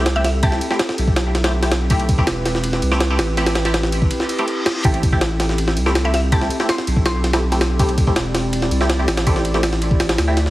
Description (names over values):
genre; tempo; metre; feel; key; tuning
drum and bass, jungle; 163 BPM; 4/4; straight; A minor; A4 = 440 Hz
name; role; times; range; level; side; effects
warbly tape-like pad; sustained chords; 0.0-10.5 s; C4 to D5; -26 LUFS; equal; chorus, built-in reverb
band-passed chord stab; stabs; 0.0-10.4 s; A3 to G4; -24 LUFS; equal; phaser, dub echo
saturated sub bass; bass; 0.0-10.5 s; E1 to D2; -20 LUFS; equal; none
jungle sampler-style drum kit; drums; 0.1-10.5 s; kick drum, ride cymbal, snare drum; -19 LUFS; equal; small room reverb
mallet-like synth pluck; melody; 0.2-0.7, 6.0-7.3 s; E5 to C6; -28 LUFS; equal; chorus, dub echo
reverse cymbal; sound effects; 4.3-4.8 s; none; -28 LUFS; left 1 dB; none
room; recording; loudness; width
light reverb; heavily compressed radio sound, multiband compression, vinyl crackle; -16 LUFS; side -16 dB against mid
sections
0.0-10.5 A section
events
break 4.1-4.8; reverse cymbal 4.3-4.8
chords
0.0 Am7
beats
0.06 | 0.43 0.80 1.17 1.54 | 1.90 2.27 2.64 3.01 | 3.38 3.75 4.11 4.48 | 4.85 5.22 5.58 5.95 | 6.32 6.69 7.06 7.43 | 7.79 8.16 8.53 8.90 | 9.27 9.63 10.00 10.37